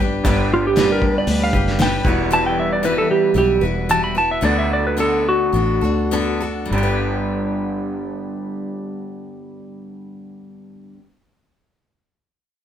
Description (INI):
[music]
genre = folk rock and heartland rock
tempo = 98-117 BPM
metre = 4/4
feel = straight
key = G major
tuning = A4 = 441 Hz
[part]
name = picked steel-string acoustic guitar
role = accompaniment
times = 0.0-11.1 s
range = D3 to B4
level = -24 LUFS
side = left 4 dB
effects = none
[part]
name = electric guitar through a small old amp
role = riff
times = 0.0-11.0 s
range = E2 to G4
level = -25 LUFS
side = right 2 dB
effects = none
[part]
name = fingered electric bass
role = bass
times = 0.0-10.9 s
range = E1 to D2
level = -23 LUFS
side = equal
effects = none
[part]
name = cloth-damped thuddy drum kit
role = drums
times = 0.2-2.2 s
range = hi-hat, kick drum, snare drum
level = -20 LUFS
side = equal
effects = none
[part]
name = clean lap steel guitar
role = melody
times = 0.5-6.4 s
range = F4 to B5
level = -18 LUFS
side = right 1 dB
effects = none
[sound]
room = light reverb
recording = band playing live in one room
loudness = -16 LUFS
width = side -9 dB against mid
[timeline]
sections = 0.0-6.7 A section; 6.7-11.6 B section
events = electric slide guitar solo 0.0-6.7; slowing down 2.3-6.7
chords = 0.0 G; 2.1 Emadd9; 4.4 D6; 6.7 G